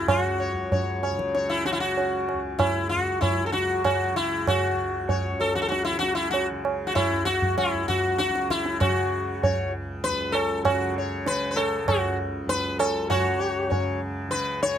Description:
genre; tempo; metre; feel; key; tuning
indian classical, Hindustani; 97 BPM; 7/4; straight; C# raga malkauns; A4 = 442 Hz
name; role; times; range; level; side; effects
sitar; melody; 0.0-14.8 s; E4 to C#5; -25 LUFS; left 2 dB; none
tanpura; drone; 0.0-14.8 s; C#2 to C#3; -33 LUFS; right 1 dB; none
tabla; percussion; 0.1-14.8 s; none; -27 LUFS; right 3 dB; none
room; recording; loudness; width
light reverb; close, detailed microphones; -22 LUFS; side -9 dB against mid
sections
0.0-13.1 A section; 13.1-14.8 B section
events
speeding up 0.0-14.8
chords
none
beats
| 0.09 0.71 1.34 1.97 2.59 3.22 3.84 | 4.46 5.09 5.71 6.33 6.95 7.57 8.19 | 8.80 9.42 10.04 10.65 11.27 11.88 12.49 | 13.10 13.71 14.32

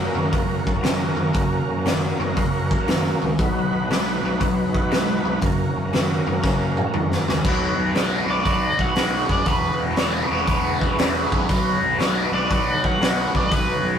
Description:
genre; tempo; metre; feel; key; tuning
blues rock power trio and southern rock; 118 BPM; 4/4; swing 66% on 8ths; B major; A4 = 441 Hz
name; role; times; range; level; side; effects
overdriven tonewheel organ; sustained chords; 0.0-14.0 s; A#3 to B4; -27 LUFS; right 2 dB; chorus vibrato, slow rotary speaker
biting overdriven guitar; riff; 0.0-14.0 s; E2 to G#3; -24 LUFS; equal; phaser
fuzz picked electric bass; bass; 0.0-14.0 s; E1 to F#2; -27 LUFS; equal; overdrive
raw garage drum kit; drums; 0.3-13.7 s; crash cymbal, hi-hat, kick drum, snare drum, toms; -23 LUFS; equal; none
overdriven slide guitar; melody; 8.3-13.9 s; B4 to F#5; -25 LUFS; equal; none
room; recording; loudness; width
moderate studio reverb, RT60 0.5 s; rough rehearsal-room recording; -18 LUFS; side -8 dB against mid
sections
0.0-7.5 A section; 7.5-14.0 B section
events
drum fill 6.4-7.5; electric slide guitar solo 7.5-14.0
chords
0.0 F#; 3.4 B; 5.4 F#; 7.5 B; 9.5 E; 11.5 B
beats
0.33 0.84 | 1.35 1.86 2.37 2.88 | 3.39 3.90 4.40 4.91 | 5.42 5.93 6.44 6.94 | 7.45 7.96 8.46 8.97 | 9.47 9.98 10.48 10.99 | 11.49 12.00 12.50 13.01 | 13.51

